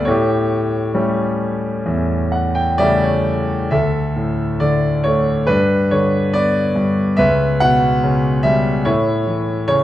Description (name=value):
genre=classical, lyrical solo piano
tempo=63-73 BPM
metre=4/4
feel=rubato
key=D major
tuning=A4 = 440 Hz
part: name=bright concert grand piano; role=solo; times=0.0-9.8 s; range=C#2 to G5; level=-14 LUFS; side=equal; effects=none
room=moderate scoring stage reverb, RT60 1.6 s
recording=dark, warm production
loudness=-15 LUFS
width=side -13 dB against mid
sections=0.0-3.7 A section; 3.7-9.8 B section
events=grand piano fill 1.9-3.7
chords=0.1 A7; 3.7 D5; 5.5 G; 7.2 C#m7b5; 8.9 A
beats=| 0.08 0.95 1.85 2.79 | 3.72 4.60 5.48 6.34 | 7.19 8.04 8.87 9.69